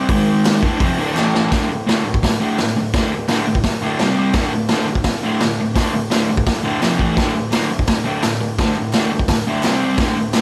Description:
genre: garage rock duo or trio.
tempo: 170 BPM.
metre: 4/4.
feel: straight.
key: unclear.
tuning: A4 = 441 Hz.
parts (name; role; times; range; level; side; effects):
raw garage guitar; riff; 0.0-10.4 s; D2 to C4; -20 LUFS; equal; overdrive, spring reverb.
raw garage drum kit; drums; 0.1-10.4 s; hi-hat, kick drum, snare drum; -21 LUFS; equal; none.
group handclap; percussion; 0.5-1.2, 7.5-10.4 s; none; -34 LUFS; equal; none.
room: light reverb.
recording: none.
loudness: -18 LUFS.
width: mono.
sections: 0.0-1.5 A section; 1.5-10.4 B section.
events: drum fill 1.2-1.5.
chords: 0.1 G#5; 0.6 D5; 1.2 A5; 1.5 D5; 4.0 C5; 4.4 D5; 6.8 F5; 7.0 A5; 7.2 D5; 9.6 C5.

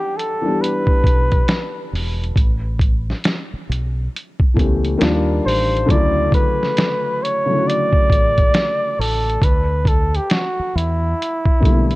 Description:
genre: lo-fi hip hop.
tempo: 68 BPM.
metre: 4/4.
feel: swing 64% on 16ths.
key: unclear.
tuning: A4 = 440 Hz.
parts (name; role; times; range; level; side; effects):
mellow flugelhorn; melody; 0.0-12.0 s; E4 to D5; -20 LUFS; equal; low-pass filter.
felt-muted upright piano; accompaniment; 0.0-12.0 s; C#3 to F#5; -22 LUFS; left 2 dB; cassette tape, low-pass filter.
lo-fi sampler-style drum kit; drums; 0.2-12.0 s; hi-hat, kick drum, snare drum; -17 LUFS; equal; none.
deep dub fingered electric bass; bass; 1.0-12.0 s; E1 to E2; -20 LUFS; equal; none.
room: small room ambience.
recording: cassette tape.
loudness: -15 LUFS.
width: side -19 dB against mid.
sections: 0.0-12.0 A section.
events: none.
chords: 0.0 Em9; 2.4 A7; 5.0 D#maj7; 5.9 Dmaj7; 9.4 G69/D.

